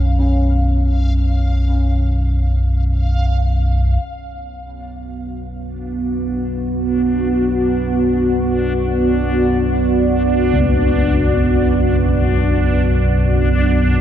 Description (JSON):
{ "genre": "dark ambient drone", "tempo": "free time", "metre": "none", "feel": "none", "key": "B minor", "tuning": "A4 = 440 Hz", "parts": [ { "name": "gamelan-type bossed gongs", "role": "arpeggios", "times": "0.0-14.0 s", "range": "C#2 to C#4", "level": "-24 LUFS", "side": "left 1 dB", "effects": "diffuse ambient delay" }, { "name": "deep rumbling drone", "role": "drone", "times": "0.0-14.0 s", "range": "B1 to F#2", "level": "-17 LUFS", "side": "equal", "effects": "built-in reverb" }, { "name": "backwards swelling texture", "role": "texture", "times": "0.0-14.0 s", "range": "D4 to E#5", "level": "-27 LUFS", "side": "left 2 dB", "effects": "built-in reverb" }, { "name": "deep dark ambient pad", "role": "sustained chords", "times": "5.1-14.0 s", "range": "B3 to D5", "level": "-17 LUFS", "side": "right 1 dB", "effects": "chorus, built-in reverb" } ], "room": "moderate huge ambient reverb, RT60 8.8 s", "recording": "dark, warm production", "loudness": "-14 LUFS", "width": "side -10 dB against mid", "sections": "0.0-4.0 A section; 4.0-14.0 B section", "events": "filter sweep on synth drone 0.0-4.0; fade-in on synth drone 4.0-14.0; fade-in on synth texture 4.0-14.0; fade-out on ambient pad 4.0-14.0", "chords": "0.0 Bsus2; 4.0 Bm", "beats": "free time" }